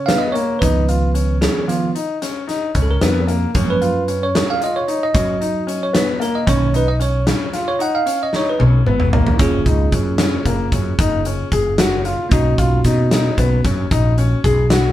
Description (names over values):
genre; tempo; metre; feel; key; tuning
progressive instrumental, band music in an uneven meter; 226 BPM (eighths); 11/8; straight; unclear; A4 = 441 Hz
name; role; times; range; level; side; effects
bell-like tine electric piano; accompaniment; 0.0-14.9 s; Eb3 to Gb5; -21 LUFS; right 3 dB; none
mellow fretless electric bass; bass; 0.0-14.9 s; Gb1 to Gb3; -18 LUFS; equal; none
warm baby grand piano; arpeggios; 0.1-14.9 s; Bb3 to Ab4; -22 LUFS; left 4 dB; none
big rock drum kit; drums; 0.1-14.8 s; hi-hat, kick drum, snare drum, toms; -19 LUFS; equal; none
room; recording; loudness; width
moderate studio reverb, RT60 0.5 s; band playing live in one room; -15 LUFS; side -13 dB against mid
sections
0.0-9.4 A section; 9.4-14.9 B section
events
tine electric piano solo 0.0-9.4; drum fill 8.3-9.4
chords
0.0 Db9; 3.6 Gbmaj7; 6.5 Cbmaj9; 9.4 Gbmaj7; 12.3 Cbmaj7